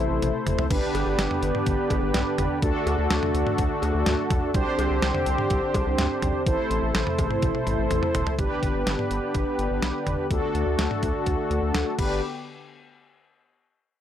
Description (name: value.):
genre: synth-pop.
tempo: 125 BPM.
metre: 4/4.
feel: straight.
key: G major.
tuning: A4 = 440 Hz.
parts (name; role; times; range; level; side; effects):
mellow synth brass; accompaniment; 0.0-12.2 s; D4 to C5; -26 LUFS; right 1 dB; chorus.
warm analog pad; sustained chords; 0.0-12.2 s; C3 to G4; -30 LUFS; left 3 dB; chorus.
round analog bass; bass; 0.0-12.2 s; F#1 to D2; -28 LUFS; equal; none.
detuned 8-bit digital drum machine; drums; 0.2-12.1 s; cowbell, crash cymbal, hi-hat, kick drum, snare drum, toms; -28 LUFS; equal; none.
room: little or no reverb.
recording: dry, gritty hardware recording, transformer saturation.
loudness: -22 LUFS.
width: side -10 dB against mid.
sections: 0.0-8.4 A section; 8.4-12.2 B section; 12.2-14.0 C section.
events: drum fill 0.2-0.7, 7.4-8.4.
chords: 0.0 Am; 0.7 G; 2.6 D; 4.5 Csus2; 6.5 Am; 8.4 G; 10.3 D; 12.0 G; 12.2 N.C..